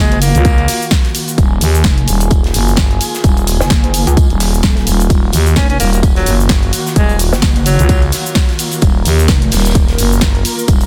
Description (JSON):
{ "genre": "bass house", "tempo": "129 BPM", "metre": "4/4", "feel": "swing 57% on 16ths", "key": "Eb minor", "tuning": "A4 = 445 Hz", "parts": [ { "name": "clear alto saxophone", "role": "melody", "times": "0.0-0.9, 5.6-8.0 s", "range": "Gb3 to Db4", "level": "-23 LUFS", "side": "equal", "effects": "delay" }, { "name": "rich symphonic string section", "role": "sustained chords", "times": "0.0-10.9 s", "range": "Eb3 to Bb4", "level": "-25 LUFS", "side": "equal", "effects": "sidechain pumping, low-pass filter" }, { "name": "pulsing pluck wobble bass", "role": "bass", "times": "0.0-9.5 s", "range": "Eb1 to Db2", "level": "-17 LUFS", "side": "equal", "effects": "chorus, tube saturation, sidechain pumping" }, { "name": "downlifter", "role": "sound effects", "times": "0.0-1.4 s", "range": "none", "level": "barely audible", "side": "none", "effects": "none" }, { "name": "house drum kit", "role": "drums", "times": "0.1-10.9 s", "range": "hi-hat, ride cymbal, shaker, snare drum", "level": "-20 LUFS", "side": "equal", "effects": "studio reverb" }, { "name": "big rock drum kit", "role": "drums", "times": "0.2-10.9 s", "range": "hi-hat, snare drum, tambourine", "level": "-29 LUFS", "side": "equal", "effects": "high-pass filter on hats, studio reverb, high-pass filter on snare, high-pass filter on perc, high-pass filter on room" }, { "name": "growling FM bass", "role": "bass", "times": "0.3-10.9 s", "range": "Eb1 to Eb2", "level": "-15 LUFS", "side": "equal", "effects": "overdrive, sidechain pumping" }, { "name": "electronic kick drum", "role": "drums", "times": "0.5-10.8 s", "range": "none", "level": "-14 LUFS", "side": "equal", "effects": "studio reverb" } ], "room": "small room ambience", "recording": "dense, heavily limited modern master", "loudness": "-12 LUFS", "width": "mono", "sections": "0.0-10.9 A section", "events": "none", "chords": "0.0 Ebmadd9" }